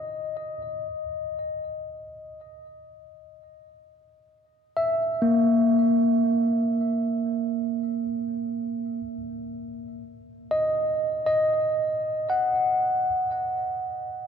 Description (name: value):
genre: ambient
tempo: free time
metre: none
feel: none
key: unclear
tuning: A4 = 440 Hz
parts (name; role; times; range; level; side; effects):
- tine electric piano; solo; 0.0-14.3 s; A#3 to F#5; -24 LUFS; equal; ping-pong delay
room: wet cathedral reverb, RT60 5.5 s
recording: in a vast, echoing space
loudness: -23 LUFS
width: side -7 dB against mid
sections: 0.9-14.3 A section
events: none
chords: 0.0 N.C.; 9.0 D#m; 13.1 N.C.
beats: free time